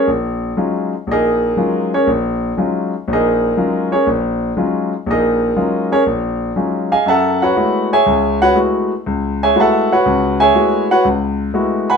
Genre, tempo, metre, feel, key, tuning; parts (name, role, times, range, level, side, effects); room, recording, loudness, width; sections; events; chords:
jazz; 120 BPM; 4/4; swing 68% on 8ths; A4 = 440 Hz
warm concert grand piano; solo; 0.0-12.0 s; Bb1 to Cb6; -13 LUFS; equal
wet studio reverb, RT60 0.7 s; minimal, uncompressed stereo recording; -13 LUFS; side -6 dB against mid
0.0-12.0 A section
0.0 Ebm11; 7.1 Gbm11